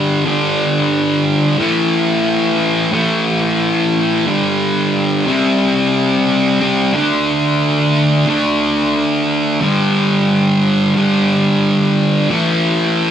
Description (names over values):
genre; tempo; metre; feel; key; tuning
rock; 90 BPM; 4/4; straight; unclear; A4 = 443 Hz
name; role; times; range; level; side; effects
thick fuzz guitar; solo; 0.0-13.1 s; G2 to D4; -12 LUFS; equal; distortion
room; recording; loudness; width
moderate stone room reverb, RT60 1.0 s; band playing live in one room; -12 LUFS; side -9 dB against mid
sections
0.0-13.1 A section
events
none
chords
0.0 G5; 1.6 A5; 4.3 G5; 5.3 C5; 6.9 D5; 9.6 G5; 12.3 A5